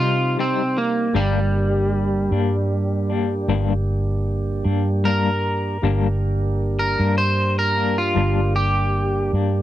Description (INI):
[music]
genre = slow blues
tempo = 51 BPM (dotted quarters)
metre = 12/8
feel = straight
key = G minor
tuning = A4 = 440 Hz
[part]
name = electric guitar at the edge of break-up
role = melody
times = 0.0-9.3 s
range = G3 to C5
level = -22 LUFS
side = equal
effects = none
[part]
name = semi-hollow electric guitar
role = accompaniment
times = 0.0-9.6 s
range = G2 to Eb4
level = -24 LUFS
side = left 9 dB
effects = tremolo
[part]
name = tonewheel organ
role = sustained chords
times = 0.0-9.6 s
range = G3 to G4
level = -27 LUFS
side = right 3 dB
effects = slow rotary speaker
[part]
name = vintage muted fingered electric bass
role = bass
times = 0.0-9.6 s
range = G1 to C3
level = -21 LUFS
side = equal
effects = none
[sound]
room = little or no reverb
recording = dry, close 1970s-style studio recording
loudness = -18 LUFS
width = side -13 dB against mid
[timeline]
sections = 0.0-9.6 A section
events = clean electric guitar solo 0.0-9.6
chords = 0.0 Cm; 1.1 Gm